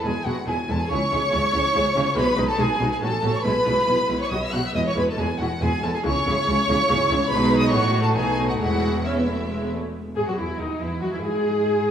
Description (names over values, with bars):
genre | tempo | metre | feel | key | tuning
quick classical-period movement for string orchestra | 140 BPM | 3/4 | rubato | E major | A4 = 445 Hz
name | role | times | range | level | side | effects
rich chamber violin section | second line | 0.0-11.9 s | D#4 to F#5 | -26 LUFS | equal | none
rich studio double bass section | bass | 0.0-11.9 s | E1 to G#2 | -28 LUFS | right 1 dB | none
rich chamber violin section | melody | 0.1-11.9 s | D#4 to F#6 | -26 LUFS | equal | none
rich chamber viola section | accompaniment | 0.1-11.9 s | F#3 to G#4 | -26 LUFS | equal | none
warm chamber cello section | bass | 0.1-11.9 s | E2 to G#3 | -28 LUFS | right 2 dB | none
room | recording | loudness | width
wet concert hall reverb, RT60 2.3 s | small room ambience | -20 LUFS | side -9 dB against mid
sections
0.0-9.9 A section; 9.9-11.9 B section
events
none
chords
0.0 E; 0.9 C#m; 2.2 G#m/B; 3.0 F#m/A; 3.4 E/B; 4.3 B5; 4.8 E; 6.1 C#m; 7.3 G#m/B; 7.7 F#m/A; 8.2 B7; 8.6 E; 9.9 Emaj9; 11.2 N.C.